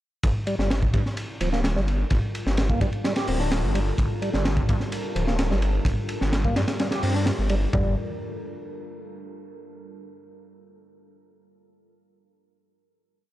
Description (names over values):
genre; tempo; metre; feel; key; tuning
breakbeat, breaks; 128 BPM; 4/4; straight; G minor; A4 = 440 Hz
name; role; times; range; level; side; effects
deep dark ambient pad; sustained chords; 2.0-8.0 s; G3 to Bb4; -35 LUFS; equal; chorus, built-in reverb, sidechain pumping
phased detuned saw bass; bass; 0.2-8.0 s; D1 to G2; -25 LUFS; equal; phaser
crunchy breakbeat drum kit; drums; 0.2-7.8 s; hi-hat, kick drum, ride cymbal, snare drum, toms; -25 LUFS; equal; none
tonewheel organ; riff; 0.5-8.0 s; F3 to G4; -30 LUFS; equal; overdrive, chorus vibrato, slow rotary speaker, digital delay
room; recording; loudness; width
little or no reverb; dark, warm production; -22 LUFS; side -14 dB against mid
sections
0.2-7.7 drop; 7.7-9.6 final chord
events
drop 0.2-7.7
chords
0.2 Gm9